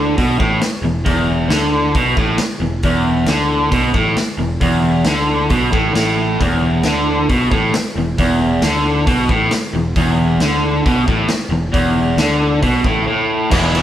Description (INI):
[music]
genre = garage rock duo or trio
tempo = 135 BPM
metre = 4/4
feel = straight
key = unclear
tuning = A4 = 439 Hz
[part]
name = raw garage guitar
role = riff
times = 0.0-13.8 s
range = E2 to E4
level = -15 LUFS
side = equal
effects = overdrive
[part]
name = growling picked electric bass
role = bass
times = 0.0-13.8 s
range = E1 to D2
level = -22 LUFS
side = equal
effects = overdrive
[part]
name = raw garage drum kit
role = drums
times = 0.2-13.8 s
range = crash cymbal, hi-hat, kick drum, ride cymbal, snare drum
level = -20 LUFS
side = equal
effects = none
[sound]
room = moderate stone room reverb, RT60 1.0 s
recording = band playing live in one room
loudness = -13 LUFS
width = side -11 dB against mid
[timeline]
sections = 0.0-13.5 A section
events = break 13.1-13.5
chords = 0.0 E5